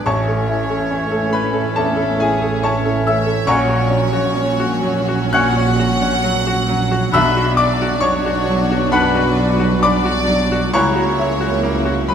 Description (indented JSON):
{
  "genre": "classical, romantic movement for piano and orchestra",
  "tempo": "67 BPM",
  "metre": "4/4",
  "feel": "uneven beats, rubato",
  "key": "B minor from 3.5 s",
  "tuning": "A4 = 441 Hz",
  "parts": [
    { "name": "clear baby grand piano", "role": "melody", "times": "0.0-12.1 s", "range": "A1 to F#6", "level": "-18 LUFS", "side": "left 1 dB", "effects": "none" },
    { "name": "warm symphonic violin section", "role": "melody", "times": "0.0-12.1 s", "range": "E4 to F#4", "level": "-30 LUFS", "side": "left 5 dB", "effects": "none" },
    { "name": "clear clarinet", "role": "second line", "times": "0.0-11.1 s", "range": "C#4 to E4", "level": "-27 LUFS", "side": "left 4 dB", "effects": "none" },
    { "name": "mellow silver concert flute", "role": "second line", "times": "0.0-11.2 s", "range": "E5 to B5", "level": "-25 LUFS", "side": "left 1 dB", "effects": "none" },
    { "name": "warm symphonic violin section", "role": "second line", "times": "0.0-12.1 s", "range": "G#4 to F#5", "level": "-24 LUFS", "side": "equal", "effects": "none" },
    { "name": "dark symphonic viola section", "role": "accompaniment", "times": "0.0-12.1 s", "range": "F#3 to D4", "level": "-25 LUFS", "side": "right 1 dB", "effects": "none" },
    { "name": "warm chamber double bass section", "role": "bass", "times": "0.0-12.1 s", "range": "A1 to C#2", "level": "-25 LUFS", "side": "right 4 dB", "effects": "none" },
    { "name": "warm symphonic cello section", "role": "bass", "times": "0.0-12.1 s", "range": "A2 to C#3", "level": "-25 LUFS", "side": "right 2 dB", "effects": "none" },
    { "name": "warm oboe", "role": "second line", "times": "0.1-11.1 s", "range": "C#5 to F#5", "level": "-27 LUFS", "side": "right 1 dB", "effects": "none" },
    { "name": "mellow French horn section", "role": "sustained chords", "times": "0.1-12.1 s", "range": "E3 to E4", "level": "-27 LUFS", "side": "left 3 dB", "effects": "none" },
    { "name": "dark tuba", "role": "bass", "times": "0.1-12.1 s", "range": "A1 to C#2", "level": "-27 LUFS", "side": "right 6 dB", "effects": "none" },
    { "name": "timpani", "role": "percussion", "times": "7.1-8.4 s", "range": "B2", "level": "-30 LUFS", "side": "right 1 dB", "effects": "none" }
  ],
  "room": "moderate scoring stage reverb, RT60 1.6 s",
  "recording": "none",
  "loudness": "-14 LUFS",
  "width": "side -8 dB against mid",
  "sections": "0.0-12.1 A section",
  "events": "none",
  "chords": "0.1 A; 3.5 F#/A#; 7.1 Bm; 10.8 F#7/C#"
}